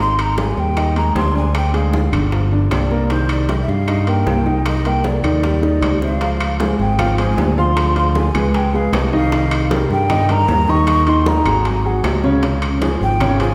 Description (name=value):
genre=Afro-Cuban jazz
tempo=154 BPM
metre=4/4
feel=straight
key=C minor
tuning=A4 = 440 Hz
part: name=breathy mellow jazz flute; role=melody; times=0.0-13.5 s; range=C5 to Db6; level=-24 LUFS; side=equal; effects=none
part: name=warm concert grand piano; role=accompaniment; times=0.0-13.5 s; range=Db3 to F5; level=-22 LUFS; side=equal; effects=none
part: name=modern bright fingered electric bass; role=bass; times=0.0-13.5 s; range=G1 to G2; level=-20 LUFS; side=equal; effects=none
part: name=bongos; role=percussion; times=0.2-13.4 s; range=none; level=-32 LUFS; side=equal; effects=none
part: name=claves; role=percussion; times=0.2-13.4 s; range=none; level=-36 LUFS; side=equal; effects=none
part: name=congas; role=percussion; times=0.2-13.5 s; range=none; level=-30 LUFS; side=equal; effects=none
part: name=timbales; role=percussion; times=0.2-13.5 s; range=none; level=-28 LUFS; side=equal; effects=none
room=wet concert hall reverb, RT60 1.9 s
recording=recorded in a church or concert hall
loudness=-17 LUFS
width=mono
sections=0.0-6.2 A section; 6.2-13.5 B section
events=drum fill 5.6-6.2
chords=0.0 Ab5; 1.5 Ddim; 2.3 G5; 3.1 Cm9; 6.2 Dbmaj7; 7.8 Ddim; 8.5 Dbsus2; 9.3 Cm7; 10.9 Ebm; 11.7 Ab7sus4; 12.4 Db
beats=0.38 0.77 1.16 | 1.55 1.94 2.33 2.71 | 3.10 3.49 3.88 4.27 | 4.66 5.05 5.44 5.83 | 6.21 6.60 6.99 7.38 | 7.77 8.16 8.54 8.93 | 9.32 9.71 10.10 10.49 | 10.88 11.27 11.65 12.04 | 12.43 12.82 13.21